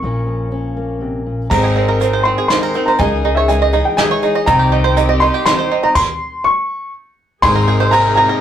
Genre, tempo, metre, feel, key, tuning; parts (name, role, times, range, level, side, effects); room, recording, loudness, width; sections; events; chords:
indie folk with a building arrangement; 122 BPM; 3/4; straight; Ab major; A4 = 436 Hz
warm upright piano; melody; 0.0-8.4 s; Fb5 to Db6; -16 LUFS; left 1 dB
fingerpicked steel-string acoustic guitar; accompaniment; 0.0-4.5 s; Ab2 to Bb4; -21 LUFS; left 2 dB
upright bass; bass; 0.0-8.2 s; Ab1 to Db2; -18 LUFS; equal
picked twelve-string acoustic guitar; accompaniment; 1.5-8.4 s; C3 to Bb4; -21 LUFS; left 4 dB
bluegrass banjo; arpeggios; 1.5-8.4 s; C4 to Eb5; -18 LUFS; right 7 dB
soft brush drum kit; drums; 1.5-8.0 s; crash cymbal, hi-hat, kick drum, ride cymbal, snare drum; -21 LUFS; equal
warm chamber string section; sustained chords; 4.5-8.4 s; C3 to Ab4; -24 LUFS; equal
felt-muted upright piano; accompaniment; 7.4-8.4 s; Ab1 to Eb5; -26 LUFS; left 2 dB
moderate studio reverb, RT60 0.5 s; rough rehearsal-room recording; -12 LUFS; side -10 dB against mid
0.0-1.5 A section; 1.5-7.4 B section
stop 6.0-7.4
0.0 Bbm; 1.5 Abadd9; 3.0 Dbmadd9; 4.5 Cm; 6.0 N.C.; 7.4 Abadd9